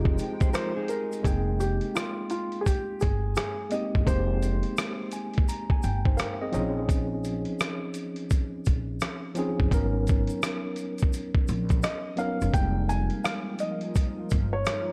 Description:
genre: lo-fi hip hop.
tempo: 85 BPM.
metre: 4/4.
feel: swing 63% on 16ths.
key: F minor.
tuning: A4 = 440 Hz.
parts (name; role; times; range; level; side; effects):
tine electric piano; accompaniment; 0.0-14.9 s; F3 to Bb5; -34 LUFS; equal; overdrive.
hollow soft pad; sustained chords; 0.0-1.2, 12.5-14.9 s; F3 to G5; -42 LUFS; equal; ensemble chorus.
upright bass; bass; 0.0-14.6 s; F1 to Bb1; -31 LUFS; equal; none.
dusty soul sampler-style drum kit; drums; 0.1-14.9 s; hi-hat, kick drum, rim click; -29 LUFS; equal; vintage 12-bit sampler grit.
tube shaker; percussion; 0.2-14.9 s; none; -50 LUFS; equal; none.
mellow electric guitar; second line; 0.4-1.2 s; Eb4 to C5; -39 LUFS; equal; analog delay.
felt-muted upright piano; melody; 0.5-5.1, 11.8-14.9 s; F4 to Ab5; -34 LUFS; equal; none.
room: little or no reverb.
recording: none.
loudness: -28 LUFS.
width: mono.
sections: 0.0-1.2 A section; 1.2-14.9 B section.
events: none.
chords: 0.0 Fm9; 1.2 Fm11; 6.5 Bbm11; 9.7 Abm11; 12.5 Fm11.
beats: 0.54 | 1.24 1.95 2.65 3.36 | 4.07 4.77 5.48 6.18 | 6.89 7.60 8.30 9.01 | 9.71 10.42 11.13 11.83 | 12.54 13.24 13.95 14.65.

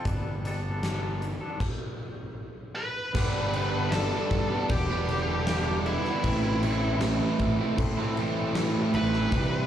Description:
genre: quiet-loud alternative rock.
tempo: 78 BPM.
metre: 4/4.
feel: straight.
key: unclear.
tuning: A4 = 440 Hz.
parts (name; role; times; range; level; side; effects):
electric guitar through a small old amp; arpeggios; 0.0-1.6 s; G3 to A4; -36 LUFS; left 2 dB; tremolo, plate reverb, slapback echo.
fuzz fingered electric bass; bass; 0.1-9.7 s; E1 to A2; -30 LUFS; equal; overdrive.
huge arena drum kit; drums; 0.1-9.5 s; crash cymbal, hi-hat, kick drum, snare drum; -31 LUFS; equal; none.
octave-fuzz lead guitar; melody; 2.8-9.7 s; E4 to B5; -32 LUFS; left 1 dB; distortion, tape echo, plate reverb.
fuzz guitar; riff; 3.1-9.7 s; G2 to E4; -30 LUFS; right 7 dB; distortion, slapback echo.
overdriven electric guitar; riff; 3.1-9.7 s; G2 to E4; -33 LUFS; left 9 dB; slapback echo.
room: moderate club reverb, RT60 0.5 s.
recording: live gig heard through the venue's PA, club reverb.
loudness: -25 LUFS.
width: side -10 dB against mid.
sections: 0.0-3.2 A section; 3.2-9.7 B section.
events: stop 1.6-3.2.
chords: 0.1 Gadd9; 3.2 G; 6.2 Am.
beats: | 0.06 0.83 1.60 2.38 | 3.15 3.92 4.70 5.47 | 6.24 7.01 7.78 8.55 | 9.32.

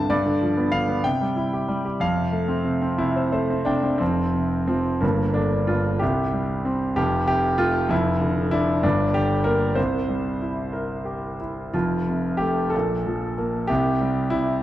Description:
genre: classical, lyrical solo piano.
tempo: 59-66 BPM (dotted quarters).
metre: 6/8.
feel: rubato.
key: F major.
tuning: A4 = 440 Hz.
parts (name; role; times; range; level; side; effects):
clear concert grand piano; solo; 0.0-14.6 s; F1 to A5; -20 LUFS; equal; none.
room: moderate scoring stage reverb, RT60 1.5 s.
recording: dark, warm production.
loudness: -20 LUFS.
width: side -13 dB against mid.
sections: 0.0-4.0 A section; 4.0-14.6 B section.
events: grand piano fill 3.0-4.0.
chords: 0.1 G7; 1.1 C; 2.0 F; 4.0 F5; 5.0 G5; 6.0 C5; 7.0 F; 7.9 Dmadd9/F; 8.8 Gm; 9.8 C7; 11.7 F; 12.7 Bb5; 13.7 C5.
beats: | 0.11 1.05 | 2.01 2.99 | 4.01 5.03 | 6.01 6.97 | 7.91 8.84 | 9.78 10.74 | 11.74 12.74 | 13.70.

